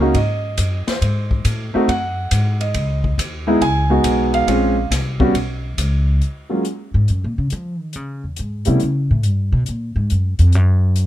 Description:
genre	jazz piano trio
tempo	139 BPM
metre	4/4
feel	swing 68% on 8ths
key	Eb minor from 6.2 s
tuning	A4 = 440 Hz
part	warm concert grand piano	melody	0.0-8.8 s	Gb3 to G#5	-18 LUFS	right 1 dB	plate reverb
part	upright bass	bass	0.0-11.1 s	A#1 to F3	-17 LUFS	equal	none
part	open jazz drum kit	drums	0.1-11.1 s	hi-hat, kick drum, ride cymbal, snare drum	-25 LUFS	left 1 dB	none
room	light reverb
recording	close, detailed microphones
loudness	-16 LUFS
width	side -13 dB against mid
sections	0.0-6.2 A section; 6.2-11.1 A section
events	grand piano solo 0.0-6.2; upright bass solo 6.2-11.1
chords	0.0 D#m7; 1.0 G#7b9; 2.7 C#7sus2; 4.5 A#m9; 5.3 Bsus2; 6.2 Ebm11; 7.9 E6; 8.8 A9; 9.7 N.C.

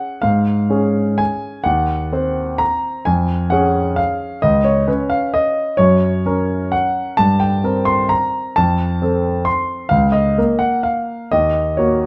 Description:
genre	classical, piano waltz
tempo	118-138 BPM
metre	3/4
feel	rubato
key	unclear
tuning	A4 = 440 Hz
part	warm concert grand piano	solo	0.0-12.1 s	Db2 to C6	-17 LUFS	equal	none
room	moderate large studio reverb, RT60 1.2 s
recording	dark, warm production, nothing above 10.6 kHz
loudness	-17 LUFS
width	mono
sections	0.0-12.1 A section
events	none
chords	0.0 Db; 1.7 Cdim/Eb; 3.1 Db/F; 4.4 Db9; 5.8 Gb; 7.2 C5/G; 8.6 F; 9.9 Bbm/Db; 11.3 Ebm

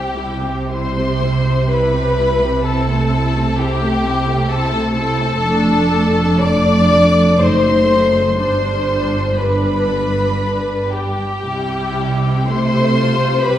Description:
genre	classical, slow romantic movement for string orchestra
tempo	54-67 BPM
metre	3/4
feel	rubato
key	C major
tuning	A4 = 440 Hz
part	rich studio violin section	melody	0.0-13.6 s	G5 to D6	-27 LUFS	left 3 dB	none
part	rich studio violin section	second line	0.0-13.6 s	G4 to D5	-18 LUFS	left 2 dB	none
part	rich studio viola section	accompaniment	0.0-13.6 s	G3 to G4	-20 LUFS	equal	none
part	rich studio cello section	bass	0.0-13.6 s	F2 to C3	-21 LUFS	right 2 dB	none
part	rich studio double bass section	bass	0.0-13.6 s	F1 to C2	-21 LUFS	right 2 dB	none
room	wet recital hall reverb, RT60 1.5 s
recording	heard from further back in the room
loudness	-14 LUFS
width	side -11 dB against mid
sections	0.0-13.6 A section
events	none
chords	0.0 C; 2.7 Am/C; 5.4 Dm/F; 7.4 F#dim7; 8.4 G; 11.4 C

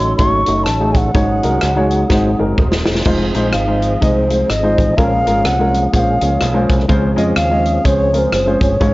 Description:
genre	uptempo gospel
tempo	126 BPM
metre	4/4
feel	swing 60% on 8ths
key	Db major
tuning	A4 = 439 Hz
part	mellow alto ocarina	melody	0.0-8.9 s	C5 to Db6	-18 LUFS	equal	none
part	dark baby grand piano	accompaniment	0.0-8.9 s	Ab2 to Eb5	-18 LUFS	left 1 dB	none
part	tonewheel organ	sustained chords	0.0-8.9 s	F3 to C5	-22 LUFS	right 2 dB	slow rotary speaker, overdrive, chorus vibrato
part	fingered electric bass	bass	0.0-8.9 s	Eb1 to F2	-19 LUFS	equal	none
part	natural country drum kit	drums	0.2-8.9 s	crash cymbal, hi-hat, kick drum, rim click, snare drum	-18 LUFS	equal	none
room	light reverb, small room ambience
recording	worn, warbling old tape, cassette tape, warbly pitch drift, nothing above 7.6 kHz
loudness	-12 LUFS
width	side -19 dB against mid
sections	0.0-8.9 A section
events	drum fill 2.1-3.1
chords	0.0 Gbm6; 1.2 Ab7sus4; 2.1 Ab7; 3.1 Fm7; 5.0 Bbm7; 6.9 Dbmaj7

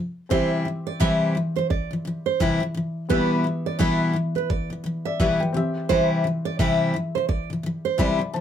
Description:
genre	acoustic pop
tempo	86 BPM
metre	4/4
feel	swing 60% on 16ths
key	C major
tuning	A4 = 440 Hz
part	picked steel-string acoustic guitar	accompaniment	0.0-8.4 s	F2 to E4	-23 LUFS	left 2 dB	none
part	felt-muted upright piano	accompaniment	0.3-8.4 s	B3 to B5	-31 LUFS	left 3 dB	none
part	nylon-string guitar	arpeggios	0.3-8.0 s	B4 to E5	-26 LUFS	right 8 dB	none
part	electronic kick drum	drums	0.3-8.2 s	none	-26 LUFS	right 1 dB	overdrive
room	moderate small room ambience, RT60 0.5 s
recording	none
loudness	-21 LUFS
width	side -9 dB against mid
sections	0.0-8.4 A section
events	none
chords	0.3 C; 3.1 Em/B; 5.5 C

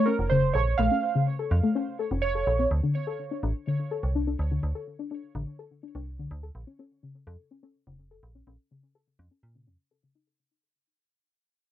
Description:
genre	IDM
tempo	125 BPM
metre	4/4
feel	straight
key	unclear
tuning	A4 = 439 Hz
part	warbly lo-fi synth keys	melody	0.0-2.7 s	Bb4 to F5	-28 LUFS	right 6 dB	chorus, tape echo
part	soft round pluck	arpeggios	0.0-10.2 s	Db3 to A4	-28 LUFS	left 4 dB	chorus, analog delay
part	metallic FM bass	bass	0.2-9.8 s	F1 to Bb2	-28 LUFS	equal	none
room	wet booth ambience, RT60 0.2 s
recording	home recording on cassette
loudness	-25 LUFS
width	side -12 dB against mid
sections	0.0-10.4 A section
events	fade-out 0.0-10.4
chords	0.0 Bbm; 2.7 D5; 6.6 Bbm

